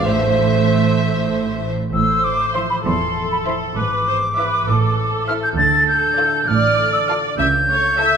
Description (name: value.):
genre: cinematic, playful, whimsical film cue.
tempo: 66 BPM (dotted quarters).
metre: 6/8.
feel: straight.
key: A minor.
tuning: A4 = 440 Hz.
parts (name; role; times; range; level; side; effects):
rich studio violin section; melody; 0.0-8.2 s; D5 to E5; -30 LUFS; left 2 dB; none.
mellow clarinet; second line; 0.0-1.4 s; C5; -27 LUFS; equal; none.
rich studio violin section; second line; 0.0-8.2 s; E4 to C5; -27 LUFS; right 1 dB; none.
silver concert flute; second line; 0.0-8.2 s; E5 to A6; -18 LUFS; left 1 dB; none.
warm cor anglais; second line; 0.0-1.6 s; C5; -28 LUFS; right 1 dB; none.
clear studio viola section; accompaniment; 0.0-8.2 s; A3 to E5; -23 LUFS; right 2 dB; none.
mellow French horn section; sustained chords; 0.0-1.0 s; A3; -29 LUFS; left 4 dB; none.
concert harp; arpeggios; 0.0-8.2 s; G#2 to B4; -26 LUFS; left 6 dB; none.
rich studio cello section; bass; 0.0-8.1 s; E2 to D3; -24 LUFS; right 5 dB; none.
rich studio double bass section; bass; 0.0-8.1 s; E1 to D2; -23 LUFS; right 6 dB; none.
room: moderate recital hall reverb, RT60 1.7 s.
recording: minimal, uncompressed stereo recording.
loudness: -15 LUFS.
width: side -7 dB against mid.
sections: 0.0-1.9 A section; 1.9-8.2 A section.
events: none.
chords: 0.1 Am; 3.8 E7/G#; 4.7 Am; 5.6 Dm; 7.4 A7/C#.